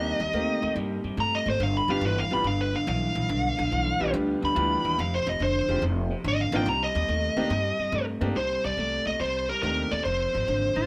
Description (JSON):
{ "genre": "electric blues shuffle", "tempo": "142 BPM", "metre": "4/4", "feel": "swing 68% on 8ths", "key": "C minor", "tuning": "A4 = 439 Hz", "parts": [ { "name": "smooth overdriven lead guitar", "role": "melody", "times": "0.0-10.9 s", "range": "Bb4 to B5", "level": "-30 LUFS", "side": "equal", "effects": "none" }, { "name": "bright upright piano", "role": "accompaniment", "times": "0.0-9.9 s", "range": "G3 to G4", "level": "-33 LUFS", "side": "equal", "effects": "none" }, { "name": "electric guitar through a small old amp", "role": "riff", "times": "0.0-10.9 s", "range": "F2 to A3", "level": "-33 LUFS", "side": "equal", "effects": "spring reverb" }, { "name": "upright bass", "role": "bass", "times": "0.0-10.9 s", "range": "F1 to G2", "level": "-33 LUFS", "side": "equal", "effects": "none" }, { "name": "clean lap steel guitar", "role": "second line", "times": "10.8-10.9 s", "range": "F4", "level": "-31 LUFS", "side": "equal", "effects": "none" } ], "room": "light reverb", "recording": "none", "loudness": "-26 LUFS", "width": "mono", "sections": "0.0-8.4 A section; 8.4-10.9 B section", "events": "lead electric guitar solo 0.0-8.4", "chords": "0.0 Cm7; 1.6 G7; 5.0 Fm7; 6.7 Cm7; 10.1 Fm" }